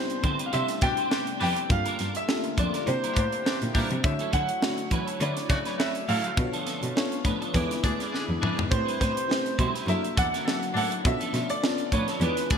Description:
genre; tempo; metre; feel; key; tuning
polished 1980s jazz-funk pop; 103 BPM; 4/4; swing 54% on 16ths; A minor; A4 = 439 Hz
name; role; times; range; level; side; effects
clear grand piano; melody; 0.0-12.6 s; B4 to G5; -30 LUFS; equal; wide subtle chorus
FM electric piano; accompaniment; 0.0-12.6 s; A3 to C#5; -33 LUFS; left 2 dB; wide subtle chorus
lush unison pad; sustained chords; 0.0-12.6 s; C3 to C#5; -39 LUFS; left 1 dB; chorus, phaser
clean electric guitar; riff; 0.1-12.5 s; F3 to D5; -34 LUFS; right 3 dB; ensemble chorus
tight funk drum kit; drums; 0.1-12.6 s; hi-hat, kick drum, snare drum, toms; -28 LUFS; equal; gated reverb
dark cello; bass; 0.2-12.6 s; D2 to E3; -30 LUFS; equal; none
clear horn section; second line; 0.8-12.6 s; C#3 to A4; -35 LUFS; left 2 dB; ping-pong delay
room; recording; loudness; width
moderate lush hall reverb, RT60 1.9 s, small room reverb; bright 1980s-style digital production; -24 LUFS; side -7 dB against mid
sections
0.0-12.6 A section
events
drum fill 8.1-8.7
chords
0.0 Am11; 1.7 Gm7; 2.9 C9; 4.0 Dmaj9; 6.4 Bm7b5; 7.5 E7; 8.7 Am9; 9.9 F#7alt; 11.0 Bm7b5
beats
0.54 1.12 | 1.71 2.29 2.87 3.46 | 4.04 4.62 5.21 5.79 | 6.38 6.96 7.54 8.13 | 8.71 9.29 9.88 10.46 | 11.05 11.63 12.22

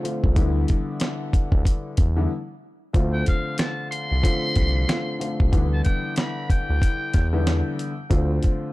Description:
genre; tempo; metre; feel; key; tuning
hip hop, boom-bap hip-hop; 93 BPM; 4/4; swing 62% on 16ths; unclear; A4 = 435 Hz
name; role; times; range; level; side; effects
warm upright piano; accompaniment; 0.0-8.7 s; D3 to F4; -28 LUFS; left 2 dB; cassette tape
dusty soul sampler-style drum kit; drums; 0.1-8.6 s; hi-hat, kick drum, snare drum; -21 LUFS; equal; none
smooth synth bass; bass; 0.2-8.4 s; C2 to E2; -22 LUFS; equal; none
trumpet with metal mute; melody; 3.1-7.4 s; F5 to C6; -30 LUFS; left 1 dB; tape echo
room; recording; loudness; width
studio reverb; dark, warm production; -20 LUFS; side -19 dB against mid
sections
0.0-8.7 A section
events
break 2.3-2.9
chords
0.4 Em7/D; 2.9 Dm7; 5.5 Em7/D; 8.1 Dm7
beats
| 0.36 1.01 1.66 2.30 | 2.94 3.59 4.24 4.88 | 5.53 6.17 6.82 7.46 | 8.11

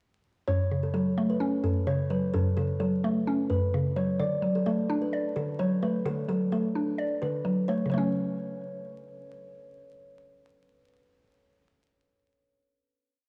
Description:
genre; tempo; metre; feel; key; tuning
hip hop; 129 BPM; 4/4; half-time; F# minor; A4 = 440 Hz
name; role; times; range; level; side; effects
kalimba; melody; 0.5-9.3 s; A4 to D5; -36 LUFS; equal; cassette tape, tape echo
mallet-like synth pluck; accompaniment; 0.5-11.3 s; F#2 to D5; -29 LUFS; equal; chorus
room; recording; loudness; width
light reverb, small room ambience; home recording on cassette, vinyl crackle; -28 LUFS; mono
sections
0.5-7.9 hook; 7.9-11.6 final chord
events
none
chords
0.5 F#m; 4.2 D; 7.9 F#m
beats
| 0.47 0.94 1.41 1.87 | 2.34 2.80 3.27 3.73 | 4.20 4.66 5.13 5.59 | 6.06 6.52 6.99 7.45 | 7.92 8.38 8.85 9.31 | 9.78 10.24 10.71 11.17

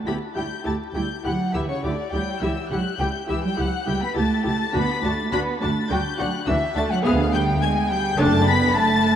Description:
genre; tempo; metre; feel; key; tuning
quick classical-period movement for string orchestra; 104 BPM; 4/4; rubato; D major; A4 = 439 Hz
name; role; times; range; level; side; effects
warm chamber cello section; bass; 0.0-9.2 s; C#3 to B3; -26 LUFS; right 3 dB; none
rich chamber violin section; melody; 0.1-9.2 s; C#6 to B6; -29 LUFS; left 7 dB; none
rich chamber violin section; second line; 0.1-9.2 s; C#5 to B5; -26 LUFS; left 2 dB; none
rich symphonic viola section; accompaniment; 0.1-8.5 s; B3 to A4; -26 LUFS; left 1 dB; none
warm chamber double bass section; bass; 0.1-8.7 s; F#1 to D2; -26 LUFS; right 2 dB; none
room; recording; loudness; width
wet cathedral reverb, RT60 5.7 s; in a vast, echoing space, vinyl crackle; -20 LUFS; side -9 dB against mid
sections
0.0-9.2 A section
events
none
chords
0.1 Em7/D; 2.4 A7/C#; 4.7 D; 7.1 Ddim7; 8.2 D/F#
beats
| 0.06 0.65 1.25 1.84 | 2.42 3.00 3.58 4.17 | 4.74 5.33 5.90 6.48 | 7.05 7.62 8.20 8.77

